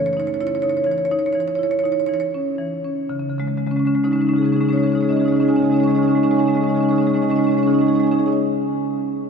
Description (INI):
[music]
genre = classical, contemporary piece for solo marimba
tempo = 77-87 BPM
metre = 5/4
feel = rubato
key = C# minor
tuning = A4 = 441 Hz
[part]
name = marimba with medium hard mallets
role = solo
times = 0.0-8.4 s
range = C#3 to C#6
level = -17 LUFS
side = equal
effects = none
[sound]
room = wet cathedral reverb, RT60 6.0 s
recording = none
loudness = -16 LUFS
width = side -6 dB against mid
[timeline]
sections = 0.0-3.1 A section; 3.1-6.9 B section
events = slowing down 0.0-3.1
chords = 0.0 C#madd9; 3.1 C#sus2